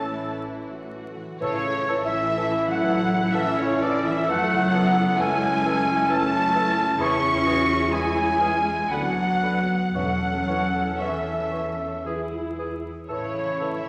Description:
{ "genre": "classical, slow romantic movement for symphony orchestra", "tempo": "57-67 BPM", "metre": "3/4", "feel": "rubato", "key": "A major", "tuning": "A4 = 439 Hz", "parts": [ { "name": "warm studio violin section", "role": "melody", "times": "0.0-13.9 s", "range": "C#5 to C#6", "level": "-34 LUFS", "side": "equal", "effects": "none" }, { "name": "bright flute section", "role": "second line", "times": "0.0-13.9 s", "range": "C#5 to C#6", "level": "-32 LUFS", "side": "equal", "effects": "none" }, { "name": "clear clarinet", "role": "second line", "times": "0.0-13.9 s", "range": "A3 to A4", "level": "-34 LUFS", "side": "equal", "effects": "none" }, { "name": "mellow cor anglais", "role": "second line", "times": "0.0-13.8 s", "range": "G#4 to C#5", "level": "-37 LUFS", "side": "equal", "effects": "none" }, { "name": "warm studio violin section", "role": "second line", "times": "0.0-13.9 s", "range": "E4 to C#6", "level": "-37 LUFS", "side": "equal", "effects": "none" }, { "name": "warm studio viola section", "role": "accompaniment", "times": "0.0-13.9 s", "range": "E3 to C#5", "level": "-36 LUFS", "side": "equal", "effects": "none" }, { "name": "mellow French horn section", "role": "sustained chords", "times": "0.0-13.9 s", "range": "A3 to A4", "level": "-33 LUFS", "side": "equal", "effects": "none" }, { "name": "concert harp", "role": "arpeggios", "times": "0.0-13.9 s", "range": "E2 to C#6", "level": "-39 LUFS", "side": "equal", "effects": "none" }, { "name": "dark trumpet section", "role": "stabs", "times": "0.0-13.9 s", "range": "C#5 to C#6", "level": "-29 LUFS", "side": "equal", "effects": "none" }, { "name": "rich symphonic cello section", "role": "bass", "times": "0.0-13.9 s", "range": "C#3 to C#4", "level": "-31 LUFS", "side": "equal", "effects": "none" }, { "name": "warm studio double bass section", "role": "bass", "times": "0.0-13.9 s", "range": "A1 to F#2", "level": "-38 LUFS", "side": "equal", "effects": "none" }, { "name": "dark bassoon", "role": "accompaniment", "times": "1.4-13.8 s", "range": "D3 to E3", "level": "-37 LUFS", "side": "equal", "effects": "none" }, { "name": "timpani", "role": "percussion", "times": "9.9-11.5 s", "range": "E2", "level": "-40 LUFS", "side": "equal", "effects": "none" } ], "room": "wet scoring stage reverb, RT60 1.6 s", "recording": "vinyl crackle", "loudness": "-23 LUFS", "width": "mono", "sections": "0.0-1.4 A section; 1.4-13.9 B section", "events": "none", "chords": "0.0 A; 4.3 F#m7; 7.0 C#m/E; 8.9 Bm/D; 9.9 A/E; 12.0 E; 13.1 A" }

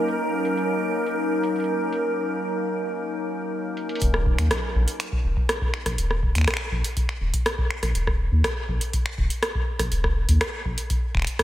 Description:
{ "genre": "IDM", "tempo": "122 BPM", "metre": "4/4", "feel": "straight", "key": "Eb minor", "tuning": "A4 = 443 Hz", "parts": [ { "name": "icy glass pad", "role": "sustained chords", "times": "0.0-4.0 s", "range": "Gb3 to Bb4", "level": "-25 LUFS", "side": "equal", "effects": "chorus, built-in reverb" }, { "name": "flickering grainy texture", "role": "texture", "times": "0.0-2.0 s", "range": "Bb4", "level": "-38 LUFS", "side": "equal", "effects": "none" }, { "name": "booming analog drum machine", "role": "drums", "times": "0.1-11.4 s", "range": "finger snaps, hi-hat, rim click", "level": "-27 LUFS", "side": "equal", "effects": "low-pass filter on hats, low-pass filter on snare, low-pass filter on toms, diffuse ambient delay" }, { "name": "round analog bass", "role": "bass", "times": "4.0-11.2 s", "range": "Eb1 to Eb2", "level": "-23 LUFS", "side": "equal", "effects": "none" }, { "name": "electronic kick drum", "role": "drums", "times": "4.0-11.4 s", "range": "none", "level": "-26 LUFS", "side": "equal", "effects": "none" } ], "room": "moderate lush hall reverb, RT60 2.2 s", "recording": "dreamy mix soaked in reverb", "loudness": "-22 LUFS", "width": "side -13 dB against mid", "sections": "0.0-4.0 A section; 4.0-11.4 B section", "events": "break 2.0-4.0; drum fill 3.8", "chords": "0.0 Ebm7; 4.0 Eb5" }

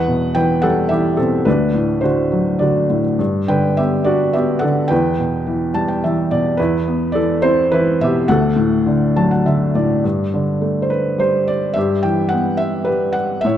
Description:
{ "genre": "classical, lyrical solo piano", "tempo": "106 BPM", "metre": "3/4", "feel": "rubato", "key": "G major", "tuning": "A4 = 440 Hz", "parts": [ { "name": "felt-muted upright piano", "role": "solo", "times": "0.0-13.6 s", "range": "D2 to A5", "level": "-14 LUFS", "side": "equal", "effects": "none" } ], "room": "moderate scoring stage reverb, RT60 1.6 s", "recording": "dark, warm production", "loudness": "-14 LUFS", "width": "side -10 dB against mid", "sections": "0.0-10.0 A section; 10.0-13.6 B section", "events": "felt piano fill 5.5-6.6, 8.9-10.0", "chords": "0.0 Emadd9; 1.5 D; 3.2 G; 4.9 Em; 6.6 Amadd9/E; 8.3 D; 10.0 Gsus2; 11.8 Em/G" }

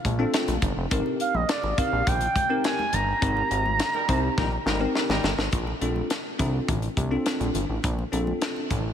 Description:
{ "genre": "early-eighties boogie funk", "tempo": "104 BPM", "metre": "4/4", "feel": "straight", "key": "Bb major", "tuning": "A4 = 441 Hz", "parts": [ { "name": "expressive synth lead", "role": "melody", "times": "0.0-5.0 s", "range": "D5 to Bb5", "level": "-27 LUFS", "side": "right 3 dB", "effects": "chorus, ping-pong delay" }, { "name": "fat analog bass", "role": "bass", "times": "0.0-8.9 s", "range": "F1 to C2", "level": "-28 LUFS", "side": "equal", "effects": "none" }, { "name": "tight funk drum kit", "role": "drums", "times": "0.0-8.8 s", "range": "hi-hat, kick drum, snare drum", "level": "-28 LUFS", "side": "left 1 dB", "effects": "none" }, { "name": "congas", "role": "percussion", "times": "0.1-8.8 s", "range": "none", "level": "-37 LUFS", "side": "left 1 dB", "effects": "none" }, { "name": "bell-like tine electric piano", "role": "accompaniment", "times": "0.2-8.7 s", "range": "C4 to C5", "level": "-29 LUFS", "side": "left 2 dB", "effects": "analog chorus" }, { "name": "warm horn section", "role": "second line", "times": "3.9-5.3 s", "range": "G3 to Bb4", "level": "-34 LUFS", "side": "left 1 dB", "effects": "none" } ], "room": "moderate huge ambient reverb, RT60 3.9 s", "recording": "dreamy mix soaked in reverb", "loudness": "-22 LUFS", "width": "side -9 dB against mid", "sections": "0.0-5.5 A section; 5.5-8.9 B section", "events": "band accent 3.2-5.5; drum fill 4.4-5.5", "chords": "0.0 Bbmaj9; 0.9 Abmaj9; 5.5 Bbmaj9" }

